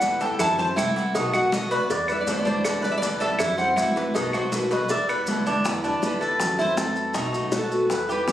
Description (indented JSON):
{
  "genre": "latin, Cuban son and guajira",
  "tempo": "160 BPM",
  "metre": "4/4",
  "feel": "straight",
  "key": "E minor",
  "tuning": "A4 = 440 Hz",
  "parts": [
    { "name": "nylon-string guitar", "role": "melody", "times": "0.0-8.3 s", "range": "A4 to A5", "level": "-26 LUFS", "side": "equal", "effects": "none" },
    { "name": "picked acoustic archtop guitar", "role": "accompaniment", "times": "0.0-8.3 s", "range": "B2 to F#4", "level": "-30 LUFS", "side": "left 2 dB", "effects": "none" },
    { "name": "Cuban tres", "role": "arpeggios", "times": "0.0-8.3 s", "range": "D4 to D5", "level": "-25 LUFS", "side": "right 1 dB", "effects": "none" },
    { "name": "upright bass", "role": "bass", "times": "0.0-8.3 s", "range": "B1 to F#2", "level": "-33 LUFS", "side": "right 1 dB", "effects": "none" },
    { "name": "congas", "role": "percussion", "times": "0.0-8.3 s", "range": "none", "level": "-31 LUFS", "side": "equal", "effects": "none" },
    { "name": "cowbell and bongos", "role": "percussion", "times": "0.0-8.3 s", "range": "none", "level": "-30 LUFS", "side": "left 2 dB", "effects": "none" },
    { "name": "maracas", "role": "percussion", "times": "0.0-8.3 s", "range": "none", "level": "-36 LUFS", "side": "equal", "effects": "none" },
    { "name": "claves", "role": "percussion", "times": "0.4-5.3 s", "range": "none", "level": "-32 LUFS", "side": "right 1 dB", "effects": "none" }
  ],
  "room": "moderate studio ambience, RT60 0.5 s",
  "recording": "recorded on a phone in the room, studio reverb, compression",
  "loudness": "-21 LUFS",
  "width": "side -12 dB against mid",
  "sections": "0.0-5.6 A section; 5.6-8.3 B section",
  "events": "nylon-string guitar solo 5.6-8.3",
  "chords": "0.4 F#m7b5; 1.1 B7; 1.9 Em7; 3.4 F#m7b5; 4.1 B7; 4.9 Em7; 6.4 F#m7b5; 7.2 B7"
}